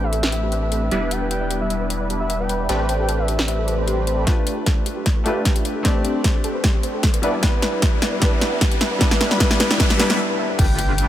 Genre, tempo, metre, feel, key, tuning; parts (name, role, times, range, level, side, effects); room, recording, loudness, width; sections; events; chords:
future bass; 152 BPM; 4/4; half-time; A minor; A4 = 435 Hz
soft octave-layered synth lead; melody; 0.0-4.2, 10.6-11.0 s; C5 to G5; -29 LUFS; left 1 dB; chorus, sidechain pumping, dub echo
soft round pluck; arpeggios; 0.0-10.6 s; G4 to E5; -30 LUFS; equal; chorus, sidechain pumping, tape echo
supersaw stab; riff; 0.0-11.1 s; G3 to E5; -24 LUFS; right 1 dB; phaser, cassette tape, sidechain pumping, low-pass filter, tape echo
saturated sub bass; bass; 0.0-11.1 s; E1 to A1; -24 LUFS; equal; sidechain pumping, high-pass filter
big-room dance drum kit; drums; 0.1-11.1 s; crash cymbal, hi-hat, snare drum; -23 LUFS; equal
swell, riser, noise sweep and impact; sound effects; 3.6-11.1 s; -30 LUFS; equal
clear baby grand piano; accompaniment; 4.2-10.6 s; G3 to D5; -26 LUFS; left 2 dB; sidechain pumping, tape echo
electronic kick drum; drums; 4.3-10.7 s; -19 LUFS; equal
light reverb, digital ambience; -17 LUFS; side -12 dB against mid
0.0-4.3 A section; 4.3-10.6 B section
filter sweep on supersaw synth 0.0-4.3, 4.3-10.6; swell 3.6-4.3; build-up 4.3-10.6; drum fill 4.3-10.2; riser 4.3-10.2; filter sweep on synth arpeggio sound 4.3-10.6; noise sweep 9.0-10.6; break 10.2-10.6; impact 10.6-11.1
0.0 Am11; 0.9 Em7; 2.7 Am11; 4.3 G9; 5.8 Am11; 7.2 Em7; 9.0 A9sus4